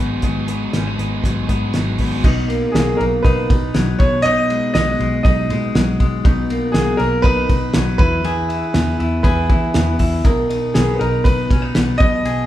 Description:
jangly indie pop; 120 BPM; 4/4; straight; B major; A4 = 440 Hz
warm upright piano; melody; 0.0-12.5 s; G#4 to D#5; -21 LUFS; right 1 dB
biting overdriven guitar; accompaniment; 0.0-2.3 s; G#2 to G#4; -27 LUFS; right 4 dB
clean electric guitar; arpeggios; 0.0-12.5 s; G#2 to A#4; -21 LUFS; left 2 dB
vintage muted picked electric bass; bass; 0.0-12.5 s; G#1 to E3; -22 LUFS; equal
cloth-damped thuddy drum kit; drums; 0.2-12.4 s; crash cymbal, hi-hat, kick drum, ride cymbal, snare drum; -18 LUFS; equal
moderate large studio reverb, RT60 1.0 s; band playing live in one room; -14 LUFS; side -13 dB against mid
0.0-2.2 A section; 2.2-12.5 B section
0.0 G#m7; 2.2 Bmaj7; 4.0 G#m7/B; 6.2 Bmaj7; 8.0 E; 10.2 Bmaj7
| 0.23 0.74 1.24 1.74 | 2.24 2.75 3.25 3.75 | 4.25 4.75 5.25 5.75 | 6.25 6.75 7.25 7.75 | 8.25 8.75 9.25 9.75 | 10.25 10.75 11.25 11.75 | 12.25

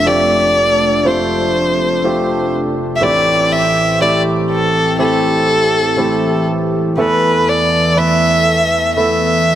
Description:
pop ballad; 61 BPM; 4/4; straight; A minor; A4 = 440 Hz
rich violin; melody; 0.0-9.6 s; A4 to E5; -14 LUFS; equal
warm concert grand piano; accompaniment; 0.0-9.6 s; F1 to C5; -17 LUFS; right 1 dB
chorused pulse-width pad; sustained chords; 0.0-9.6 s; E2 to A4; -19 LUFS; equal
moderate plate reverb, RT60 2.5 s; -12 LUFS; side -11 dB against mid
0.0-9.6 A section
0.0 F; 3.0 Am7; 7.0 Esus4
0.05 1.05 2.04 | 3.02 4.01 5.00 5.99 | 6.98 7.97 8.97

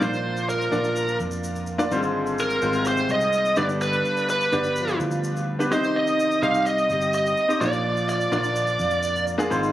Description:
piano-driven pop; 126 BPM; 4/4; straight; A4 = 440 Hz
bluesy overdriven lead guitar; melody; 0.0-9.2 s; Bb4 to F5; -23 LUFS; right 1 dB; distortion
dark French horn section; second line; 0.0-9.7 s; C3 to G4; -31 LUFS; equal
bright grand piano; accompaniment; 0.0-9.7 s; G2 to Eb5; -26 LUFS; left 1 dB
vintage muted fingered electric bass; bass; 0.0-9.7 s; G1 to F2; -31 LUFS; equal
tube shaker; percussion; 0.0-9.7 s; -42 LUFS; left 1 dB
moderate large studio reverb, RT60 1.3 s, small room reverb; recorded on a phone in the room, club reverb; -20 LUFS; side -13 dB against mid
0.0-9.7 A section
0.0 Bb; 1.9 Fm/Ab; 3.6 G; 5.7 Cm; 7.6 Bb
| 0.01 0.49 0.96 1.44 | 1.92 2.39 2.87 3.34 | 3.81 4.29 4.76 5.24 | 5.71 6.19 6.66 7.13 | 7.61 8.08 8.56 9.03 | 9.51

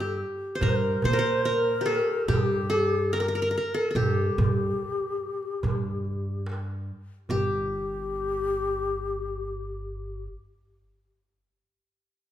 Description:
Turkish makam ensemble; 72 BPM; 4/4; straight; A4 = 440 Hz
qanun; melody; 0.0-10.3 s; G4 to C5; -28 LUFS; right 2 dB
breathy low ney; second line; 0.0-10.2 s; G4 to C5; -30 LUFS; left 4 dB
upright bass; bass; 0.0-10.3 s; G1 to Bb2; -31 LUFS; equal
darbuka; percussion; 0.6-7.7 s; -31 LUFS; right 4 dB
moderate recital hall reverb, RT60 1.6 s; minimal, uncompressed stereo recording; -24 LUFS; side -11 dB against mid
0.0-7.3 A section; 7.3-10.6 B section
| 0.61 1.45 2.29 3.12 | 3.96 4.79 5.63 6.46 | 7.30 8.13 8.96 9.80

